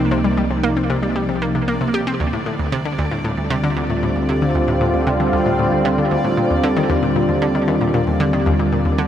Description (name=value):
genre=ambient, sequencer-driven space music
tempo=115 BPM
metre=4/4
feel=straight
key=unclear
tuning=A4 = 440 Hz
part: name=sweeping resonant pad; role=sustained chords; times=0.0-9.1 s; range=C3 to F4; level=-18 LUFS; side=equal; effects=chorus
part: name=analog pluck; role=riff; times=0.0-9.0 s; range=D2 to G4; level=-20 LUFS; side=left 1 dB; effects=chorus, analog delay
part: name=fat analog bass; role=bass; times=0.0-9.1 s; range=C2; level=-27 LUFS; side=equal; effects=none
part: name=bubbling stepped-filter texture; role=texture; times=0.0-9.1 s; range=D5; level=-30 LUFS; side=left 1 dB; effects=chorus, built-in reverb
room=wet huge ambient reverb, RT60 7.6 s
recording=none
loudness=-16 LUFS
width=side -10 dB against mid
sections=0.0-9.1 A section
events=fade-in on synth texture 0.0-9.1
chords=0.0 Cm; 2.2 Dm7; 6.4 Ebadd9